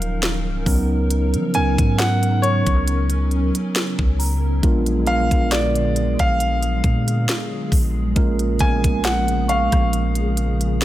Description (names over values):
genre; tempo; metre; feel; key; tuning
contemporary R&B; 68 BPM; 4/4; swing 54% on 16ths; unclear; A4 = 440 Hz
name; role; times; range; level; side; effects
warm concert grand piano; melody; 0.0-10.8 s; Db5 to Ab5; -24 LUFS; equal; tape echo
mellow tine electric piano; accompaniment; 0.0-10.8 s; F3 to Bb4; -24 LUFS; right 3 dB; phaser
hollow soft pad; sustained chords; 0.0-10.8 s; Bb2 to Bb4; -28 LUFS; equal; ensemble chorus
long sustained 808-style bass; bass; 0.0-10.8 s; Db1 to F3; -21 LUFS; equal; none
trap drum kit; drums; 0.0-10.8 s; hi-hat, kick drum, rim click, snare drum; -20 LUFS; equal; none
celesta; texture; 0.0-10.8 s; Bb5 to Db6; -31 LUFS; left 10 dB; stereo widening, tape echo
room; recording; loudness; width
digital ambience; none; -17 LUFS; side -14 dB against mid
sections
0.0-10.8 A section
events
none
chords
0.0 Ebm9; 0.7 Db13sus4; 4.6 Bb7b9; 8.2 Bbm7